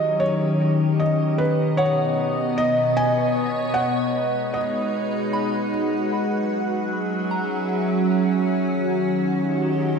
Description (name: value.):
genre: ambient.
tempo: 76 BPM.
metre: 3/4.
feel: straight.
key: unclear.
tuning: A4 = 440 Hz.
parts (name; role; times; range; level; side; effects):
felt-muted upright piano; melody; 0.0-5.7 s; B4 to G#5; -24 LUFS; right 2 dB; shimmer reverb, analog delay.
evolving wavetable pad; sustained chords; 0.0-10.0 s; B2 to A#5; -21 LUFS; equal; chorus, built-in reverb, shimmer reverb.
soft synth bell; arpeggios; 0.0-8.9 s; D#5 to B5; -34 LUFS; right 2 dB; chorus, shimmer reverb, analog delay.
room: wet lush hall reverb, RT60 3.0 s.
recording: dreamy mix soaked in reverb.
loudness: -20 LUFS.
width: side -5 dB against mid.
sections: 0.0-10.0 A section.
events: fade-out on synth bell 0.0-10.0.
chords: 0.0 D#7; 1.4 Bmaj7; 3.8 G#m7; 6.1 F#7; 8.5 D#7.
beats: 0.61 | 1.40 2.19 2.98 | 3.77 4.56 5.35 | 6.14 6.92 7.71 | 8.50 9.29.